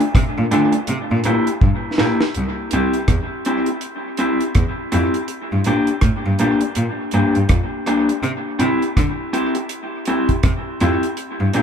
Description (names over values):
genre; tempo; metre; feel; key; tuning
roots reggae; 82 BPM; 4/4; swing 61% on 16ths; C mixolydian; A4 = 440 Hz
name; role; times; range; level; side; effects
deep reggae drum kit; drums; 0.0-11.6 s; hi-hat, kick drum, rim click, snare drum; -19 LUFS; equal; none
clear cello; bass; 0.1-11.6 s; C2 to D3; -20 LUFS; equal; none
electric guitar through a small old amp; accompaniment; 0.5-11.6 s; A3 to G4; -19 LUFS; left 1 dB; spring reverb, dub echo
room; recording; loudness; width
moderate studio ambience, RT60 0.5 s; band playing live in one room; -16 LUFS; side -7 dB against mid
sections
0.0-2.3 A section; 2.3-11.6 B section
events
drum fill 1.6-2.3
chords
0.0 Bbmaj7 (rootless); 0.9 C7 (rootless); 2.3 C; 5.3 Gm; 8.2 C